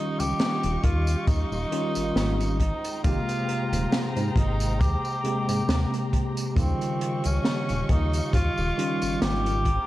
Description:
vaporwave; 68 BPM; 4/4; swing 55% on 16ths; A4 = 440 Hz
warm tenor saxophone; melody; 0.0-9.9 s; C4 to G4; -30 LUFS; equal; tape echo
tine electric piano; accompaniment; 0.0-9.7 s; C3 to G4; -29 LUFS; equal; medium stereo tremolo, wide subtle chorus, vintage 12-bit sampler grit
dark chamber string section; sustained chords; 0.0-9.9 s; Ab3 to Db6; -36 LUFS; left 1 dB
chorused synth bass; bass; 0.2-9.8 s; Eb1 to Ab2; -26 LUFS; equal
open jazz drum kit; drums; 0.2-9.9 s; hi-hat, snare drum, tambourine; -31 LUFS; equal; gated reverb
kick drum; drums; 0.8-9.8 s; -24 LUFS; equal
light reverb; cassette tape; -23 LUFS; side -16 dB against mid
0.0-9.9 A section
0.0 Eb9; 2.6 Abmaj9; 6.6 Eb9

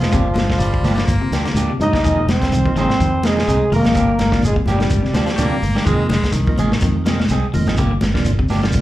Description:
afrobeat; 126 BPM; 4/4; swing 55% on 16ths; A4 = 440 Hz
trombone with bucket mute; melody; 0.0-5.6 s; F3 to Eb4; -20 LUFS; equal; slapback echo
warm trumpet; second line; 0.0-5.6 s; F4 to Eb5; -30 LUFS; right 3 dB; slapback echo
electric guitar at the edge of break-up; arpeggios; 0.0-8.8 s; C3 to F3; -26 LUFS; left 4 dB; phaser, slapback echo
clean electric guitar; stabs; 0.0-8.7 s; Eb3 to Ab4; -26 LUFS; right 5 dB; wide subtle chorus, slapback echo
fingered electric bass; bass; 0.0-8.8 s; F1 to G2; -20 LUFS; equal
crunchy breakbeat drum kit; drums; 0.0-8.8 s; hi-hat, kick drum, snare drum; -21 LUFS; equal
congas; percussion; 0.0-8.8 s; -25 LUFS; left 3 dB
shekere; percussion; 0.1-8.8 s; -26 LUFS; right 1 dB
edgy baritone saxophone; second line; 0.3-1.7, 5.1-7.3 s; D3 to Bb3; -26 LUFS; left 2 dB; slapback echo
percussive tonewheel organ; accompaniment; 2.0-8.8 s; C3 to Eb4; -24 LUFS; right 3 dB; slow rotary speaker, slapback echo
moderate club reverb, RT60 0.5 s; live gig heard through the venue's PA, club reverb; -14 LUFS; side -15 dB against mid
0.0-8.8 A section
0.1 Gm7; 2.0 Fm7; 4.0 Gm7; 5.9 Fm7; 7.8 Gm7

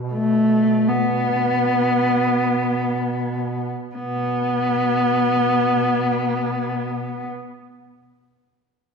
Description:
caucasian folk, Caucasian lament; free time; A4 = 439 Hz
warm duduk; drone; 0.0-7.3 s; B2; -28 LUFS; right 2 dB
dark cello; melody; 0.1-7.3 s; A3 to B3; -19 LUFS; left 1 dB
wet scoring stage reverb, RT60 1.6 s; recorded in a church or concert hall; -18 LUFS; side -5 dB against mid
0.0-4.0 A section; 4.0-7.8 B section
slowing down 0.0-4.0

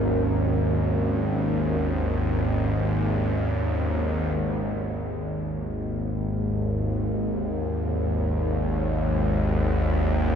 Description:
dark ambient drone; free time; A4 = 440 Hz
deep dark ambient pad; sustained chords; 0.0-4.4 s; C#4 to A#4; -32 LUFS; right 1 dB; chorus, built-in reverb
bowed-like drone; drone; 0.0-10.4 s; G#1 to D#2; -23 LUFS; equal; built-in reverb
bronze singing bowl; texture; 0.0-10.4 s; G#4; -45 LUFS; left 1 dB
dark detuned synth bell; arpeggios; 10.3-10.4 s; barely audible
wet huge ambient reverb, RT60 8.2 s; -23 LUFS; side -8 dB against mid
0.0-4.4 A section; 4.4-10.4 B section
0.0 G#5

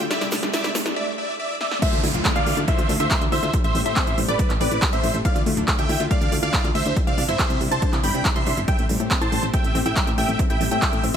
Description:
uplifting trance; 140 BPM; 4/4; straight; A4 = 439 Hz
big supersaw lead; melody; 0.0-11.2 s; B4 to C6; -26 LUFS; right 1 dB; phaser, sidechain pumping, ping-pong delay
lush unison pad; sustained chords; 0.0-11.2 s; C3 to G4; -32 LUFS; left 1 dB; chorus, vintage 12-bit sampler grit, sidechain pumping
wide unison pluck; arpeggios; 0.0-11.2 s; G3 to F4; -30 LUFS; left 3 dB; sidechain pumping, ping-pong delay
solid FM bass; bass; 0.0-11.2 s; D1 to A2; -27 LUFS; equal; tube saturation, sidechain pumping
big-room dance drum kit; drums; 0.0-11.2 s; crash cymbal, handclaps, hi-hat, snare drum; -26 LUFS; right 1 dB; overdrive, sidechain pumping on hats, sidechain pumping on cymbals
riser and downlifter; sound effects; 0.0-5.2 s; -32 LUFS; equal
egg shaker; percussion; 0.1-0.9 s; -35 LUFS; right 5 dB
wide unison pluck; second line; 1.8-11.2 s; D5 to C6; -31 LUFS; equal; sidechain pumping, ping-pong delay
electronic kick drum; drums; 1.8-10.9 s; -23 LUFS; equal; overdrive
light reverb, digital ambience; high-pass filter; -19 LUFS; side -8 dB against mid
0.0-1.8 A section; 1.8-11.2 B section
build-up 0.0-1.8; drum fill 0.0-1.0, 1.6; riser 0.0-1.0; break 1.0-1.8; drop 1.8-11.2
0.1 Cadd9; 1.8 Dmadd9; 3.5 Am7; 5.2 Dmadd9; 7.0 Cadd9; 8.7 Am7

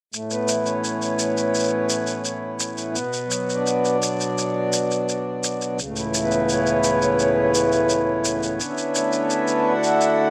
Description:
folktronica; 85 BPM; 4/4; straight; A major; A4 = 439 Hz
pedal harmonium; sustained chords; 0.1-10.3 s; C#2 to F#4; -22 LUFS; equal
shaker; drums; 0.1-10.2 s; -29 LUFS; equal; overdrive, small room ambience
wet small room reverb, RT60 0.6 s; -22 LUFS; mono
0.1-10.3 A section
0.1 Aadd9; 3.0 Bm; 5.8 Aadd9/C#; 8.6 Dmaj7

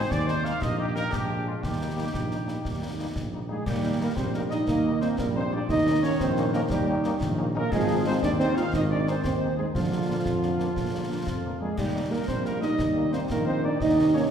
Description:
military-style march for wind band; 118 BPM (dotted quarters); 6/8; straight; Eb major; A4 = 440 Hz
mellow trumpet section; melody; 0.0-14.2 s; F4 to F5; -34 LUFS; equal
warm trombone section; sustained chords; 0.0-14.3 s; C3 to Eb4; -32 LUFS; right 1 dB
mellow tuba; bass; 0.0-14.2 s; Ab1 to F2; -30 LUFS; right 1 dB
concert snare drum, concert bass drum and clash cymbals; drums; 0.1-14.3 s; -34 LUFS; left 2 dB
clear French horn section; accompaniment; 0.3-14.2 s; G3 to Eb4; -37 LUFS; left 4 dB
dark euphonium; second line; 3.5-14.3 s; F3 to F4; -26 LUFS; right 2 dB
wet scoring stage reverb, RT60 1.5 s; heard from further back in the room; -24 LUFS; side -8 dB against mid
0.0-3.7 A section; 3.7-14.3 A section
0.0 Ab; 0.6 Eb/Bb; 1.1 Bb7; 1.6 Eb; 5.7 Eb7; 7.7 Ab; 9.7 Bb; 11.8 Eb; 13.8 Eb7(no3)

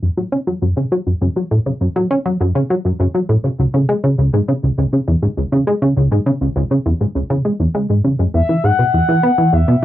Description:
ambient; 101 BPM; 4/4; straight; F# minor; A4 = 443 Hz
plucky analog bass; riff; 0.0-9.8 s; C#2 to C#4; -14 LUFS; equal; cassette tape, ping-pong delay
expressive portamento lead; melody; 8.3-9.8 s; E5 to F#5; -16 LUFS; left 3 dB; chorus, cassette tape, ping-pong delay
wet booth ambience, RT60 0.2 s; home recording on cassette; -14 LUFS; side -13 dB against mid
0.0-9.8 A section
0.0 F#5; 3.6 C#5; 8.3 E5

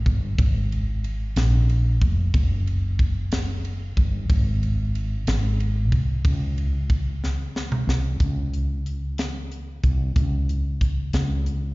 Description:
slow gospel; 61 BPM (dotted quarters); 6/8; straight; A4 = 440 Hz
woody fretless electric bass; bass; 0.0-11.7 s; F1 to Db2; -22 LUFS; equal
crisp fusion drum kit; drums; 0.1-11.6 s; hi-hat, kick drum, ride cymbal, snare drum, toms; -24 LUFS; equal
little or no reverb; live gig heard through the venue's PA, recital hall reverb, nothing above 7.4 kHz; -21 LUFS; side -22 dB against mid
0.0-8.2 A section; 8.2-11.7 B section
drum fill 7.2-8.2

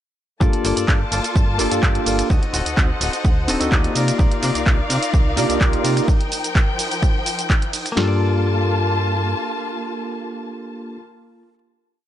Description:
filtered disco house; 127 BPM; 4/4; straight; G minor; A4 = 439 Hz
bell-like tine electric piano; accompaniment; 0.4-11.0 s; Bb3 to D5; -24 LUFS; left 1 dB; phaser, sidechain pumping
muted studio string section; sustained chords; 0.4-11.0 s; F3 to A5; -26 LUFS; left 2 dB; sidechain pumping
direct-recorded clean electric guitar; riff; 0.4-11.6 s; Bb3 to Eb5; -28 LUFS; left 3 dB; sidechain pumping
slap-like FM bass; bass; 0.4-9.3 s; D1 to C3; -23 LUFS; equal; tube saturation, sidechain pumping
punchy analog drum machine; drums; 0.4-8.1 s; kick drum, snare drum; -17 LUFS; equal
punchy analog drum machine; drums; 0.4-8.0 s; finger snaps, handclaps, hi-hat, ride cymbal, shaker; -25 LUFS; right 2 dB; sidechain pumping on perc, sidechain pumping on hats, sidechain pumping on cymbals
light reverb, digital ambience; nothing above 10.7 kHz; -16 LUFS; side -11 dB against mid
0.4-8.0 drop; 8.0-11.7 final chord
drop 0.4-8.0
0.4 Gm9; 2.3 D7b9; 4.0 Cm11; 6.1 F9sus4; 8.0 Gm9

